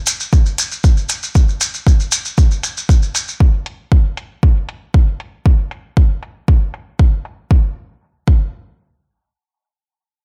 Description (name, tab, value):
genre	techno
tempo	117 BPM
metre	4/4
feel	straight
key	none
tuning	none
part	electronic hi-hat	drums	0.1-7.4 s	none	-26 LUFS	equal	low-pass filter on hats, studio reverb
part	maracas	percussion	0.1-3.4 s	none	-22 LUFS	equal	none
part	electronic kick drum	drums	0.3-8.4 s	none	-13 LUFS	equal	studio reverb
room	small room ambience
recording	none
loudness	-16 LUFS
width	mono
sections	0.0-7.5 A section; 7.5-10.2 B section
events	filter sweep on drum 0.0-7.5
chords	none